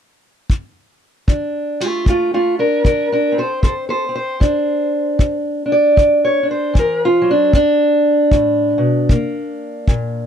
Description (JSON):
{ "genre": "acoustic country blues, solo or duo", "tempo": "77 BPM", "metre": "4/4", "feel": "swing 60% on 8ths", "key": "unclear", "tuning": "A4 = 440 Hz", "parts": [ { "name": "kick drum", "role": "drums", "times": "0.5-10.1 s", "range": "none", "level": "-14 LUFS", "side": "equal", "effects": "none" }, { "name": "fingerpicked steel-string acoustic guitar", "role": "melody", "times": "1.3-10.3 s", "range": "G2 to D5", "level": "-14 LUFS", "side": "equal", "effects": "none" } ], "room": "little or no reverb", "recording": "dry, close 1970s-style studio recording", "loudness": "-14 LUFS", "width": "side -8 dB against mid", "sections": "0.0-1.3 A section; 1.3-10.3 B section", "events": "none", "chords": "0.0 N.C.; 1.3 D7(no3); 7.5 G; 9.1 Bbadd9" }